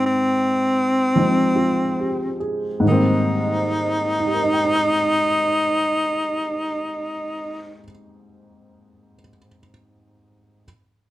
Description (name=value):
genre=jazz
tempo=45-54 BPM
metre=4/4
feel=swing 68% on 8ths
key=Ab major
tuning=A4 = 440 Hz
part: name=warm baby grand piano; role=accompaniment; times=0.0-10.7 s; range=Ab2 to Eb6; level=-22 LUFS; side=equal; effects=none
part: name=breathy tenor saxophone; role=melody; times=0.1-7.8 s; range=C4 to Eb4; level=-20 LUFS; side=equal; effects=none
room=light reverb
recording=none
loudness=-18 LUFS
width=side -15 dB against mid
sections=0.0-2.8 A section; 2.8-8.1 B section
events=slowing down 0.0-2.8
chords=0.0 Abmaj7